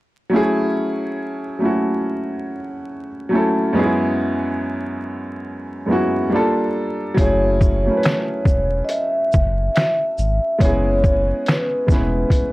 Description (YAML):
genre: lo-fi hip hop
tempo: 70 BPM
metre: 4/4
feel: swing 60% on 16ths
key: F# minor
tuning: A4 = 442 Hz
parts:
  - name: warm upright piano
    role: accompaniment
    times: 0.3-12.5 s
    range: F#2 to B4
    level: -20 LUFS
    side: equal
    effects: low-pass filter
  - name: vibraphone with soft mallets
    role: melody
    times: 7.2-12.5 s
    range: B4 to E5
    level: -20 LUFS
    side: equal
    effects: low-pass filter
  - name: sub bass with octave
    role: bass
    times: 7.2-12.2 s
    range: E1 to G#1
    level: -21 LUFS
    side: equal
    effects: transformer saturation
  - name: trip hop sampler-style drum kit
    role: drums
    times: 7.2-12.5 s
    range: finger snaps, hi-hat, kick drum, shaker, snare drum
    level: -17 LUFS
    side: equal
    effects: none
room: little or no reverb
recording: dry, gritty hardware recording, vinyl crackle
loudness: -17 LUFS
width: side -19 dB against mid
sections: 0.3-7.2 A section; 7.2-12.5 B section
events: none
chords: 0.3 F#m7; 3.8 C#m7/F#; 6.3 Gm7; 7.2 F#m7; 10.6 C#m7/F#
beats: | 0.32 1.18 2.04 2.89 | 3.75 4.61 5.46 6.32 | 7.18 8.04 8.89 9.75 | 10.61 11.46 12.32